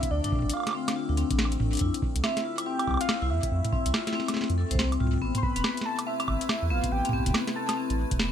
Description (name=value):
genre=IDM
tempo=141 BPM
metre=4/4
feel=swing 62% on 16ths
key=unclear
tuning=A4 = 441 Hz
part: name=warm velvety synth lead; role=melody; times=0.0-8.0 s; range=D5 to C6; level=-33 LUFS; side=right 2 dB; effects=chorus, tremolo, digital delay
part: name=icy glass pad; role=sustained chords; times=0.0-8.3 s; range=C3 to B4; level=-36 LUFS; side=left 4 dB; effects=chorus, built-in reverb
part: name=booming analog drum machine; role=drums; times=0.0-8.3 s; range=hi-hat, snare drum, toms, woodblock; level=-30 LUFS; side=right 2 dB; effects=none
part: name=electronic kick drum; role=drums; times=0.0-8.2 s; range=none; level=-31 LUFS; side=right 1 dB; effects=none
part: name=vibraphone with medium hard mallets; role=arpeggios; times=0.1-8.3 s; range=B3 to C5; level=-32 LUFS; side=left 7 dB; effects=ping-pong delay
part: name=warm sub bass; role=bass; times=0.1-8.3 s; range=E1 to F2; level=-28 LUFS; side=right 1 dB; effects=none
room=light reverb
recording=bright 1980s-style digital production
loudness=-25 LUFS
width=side -9 dB against mid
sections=0.0-8.3 A section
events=none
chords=0.0 Dm7; 1.8 Fmaj7; 5.2 Amadd9